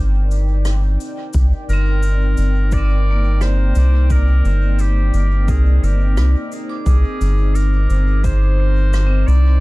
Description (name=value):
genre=ambient dub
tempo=87 BPM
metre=4/4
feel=swing 59% on 16ths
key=C minor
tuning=A4 = 440 Hz
part: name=warm analog pad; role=sustained chords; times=0.0-9.6 s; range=C4 to Bb5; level=-28 LUFS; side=equal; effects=chorus
part: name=vibraphone with hard mallets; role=arpeggios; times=0.0-9.6 s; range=Bb3 to D6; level=-30 LUFS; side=equal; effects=dub echo
part: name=round analog bass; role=bass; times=0.0-9.6 s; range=G1 to C2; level=-14 LUFS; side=equal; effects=none
part: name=cabasa and rim click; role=drums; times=0.3-9.4 s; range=none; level=-34 LUFS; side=equal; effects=dub echo
part: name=electronic kick drum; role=drums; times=1.3-8.4 s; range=none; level=-21 LUFS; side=equal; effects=none
part: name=bright clarinet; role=melody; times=1.7-9.6 s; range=G4 to D5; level=-28 LUFS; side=equal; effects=dub echo
room=small room reverb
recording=echo-heavy mix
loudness=-14 LUFS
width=side -21 dB against mid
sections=0.0-9.6 A section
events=none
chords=0.0 Cm9